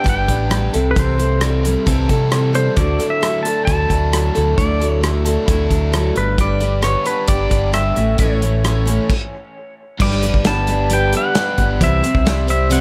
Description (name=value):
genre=folk rock and heartland rock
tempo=133 BPM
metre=4/4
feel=straight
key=unclear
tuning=A4 = 440 Hz
part: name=pedal steel guitar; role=melody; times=0.0-12.8 s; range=B4 to A5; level=-24 LUFS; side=equal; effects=dub echo
part: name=picked steel-string acoustic guitar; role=accompaniment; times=0.0-12.8 s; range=A2 to C#5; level=-24 LUFS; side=equal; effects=none
part: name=overdriven electric guitar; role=riff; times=0.0-12.8 s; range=G2 to A4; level=-27 LUFS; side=equal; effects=dub echo
part: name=fingered electric bass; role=bass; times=0.1-12.8 s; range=G1 to C3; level=-21 LUFS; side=equal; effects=none
part: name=natural country drum kit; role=drums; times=0.1-12.8 s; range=crash cymbal, hi-hat, kick drum, rim click, snare drum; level=-22 LUFS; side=equal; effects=none
part: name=mellow tonewheel organ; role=sustained chords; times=10.0-12.8 s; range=G4 to C6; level=-31 LUFS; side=equal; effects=none
room=studio reverb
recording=echo-heavy mix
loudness=-17 LUFS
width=mono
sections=0.0-10.0 A section; 10.0-12.8 B section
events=stop 9.1-10.0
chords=0.0 G; 0.7 C6; 2.8 Dadd9; 6.2 G; 8.0 A; 10.0 G; 11.8 C